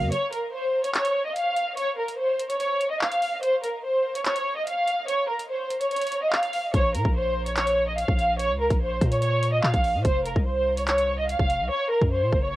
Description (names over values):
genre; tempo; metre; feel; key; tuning
hip hop, drill; 145 BPM; 4/4; half-time; Bb minor; A4 = 440 Hz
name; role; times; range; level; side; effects
warm studio violin section; melody; 0.0-12.6 s; Bb4 to F5; -24 LUFS; equal; low-pass filter, cassette tape, tape echo
long sustained 808-style bass; bass; 0.0-0.1, 6.7-12.6 s; F1 to Bb2; -28 LUFS; equal; none
drill drum kit; drums; 0.1-12.4 s; handclaps, hi-hat, kick drum; -26 LUFS; equal; cassette tape
room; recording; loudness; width
light reverb; home recording on cassette; -22 LUFS; side -16 dB against mid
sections
0.1-12.6 A section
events
kick muted 0.1-6.7; hi-hats muted 11.7-12.6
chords
0.1 N.C.; 6.7 Bbm; 10.0 F5; 11.7 Gb